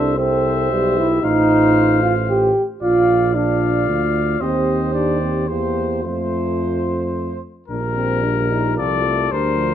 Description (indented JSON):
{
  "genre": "classical, brass quintet",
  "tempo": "112 BPM",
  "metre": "3/4",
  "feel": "straight",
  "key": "Bb major",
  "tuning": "A4 = 441 Hz",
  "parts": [
    { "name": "warm trumpet", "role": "melody", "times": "0.0-9.7 s", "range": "Bb4 to F5", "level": "-24 LUFS", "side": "left 10 dB", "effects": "none" },
    { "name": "warm flugelhorn", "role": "second line", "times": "0.0-9.7 s", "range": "A4 to D5", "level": "-25 LUFS", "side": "right 5 dB", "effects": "none" },
    { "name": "dark trombone", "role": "accompaniment", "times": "0.0-9.7 s", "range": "F3 to G4", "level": "-20 LUFS", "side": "right 2 dB", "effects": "none" },
    { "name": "mellow French horn", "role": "accompaniment", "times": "0.0-9.7 s", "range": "C4 to A4", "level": "-25 LUFS", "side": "left 4 dB", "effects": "none" },
    { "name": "warm tuba", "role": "bass", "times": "0.0-9.7 s", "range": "A1 to F2", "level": "-22 LUFS", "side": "right 2 dB", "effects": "none" }
  ],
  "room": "moderate large studio reverb, RT60 1.2 s",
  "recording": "dark, warm production",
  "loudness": "-16 LUFS",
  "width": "side -10 dB against mid",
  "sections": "0.0-7.7 A section; 7.7-9.7 B section",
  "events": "none",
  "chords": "0.0 Am/C; 1.2 F7/A; 2.8 Bb; 4.4 Cm/Eb; 5.5 C7/E; 6.0 F; 7.7 Bb"
}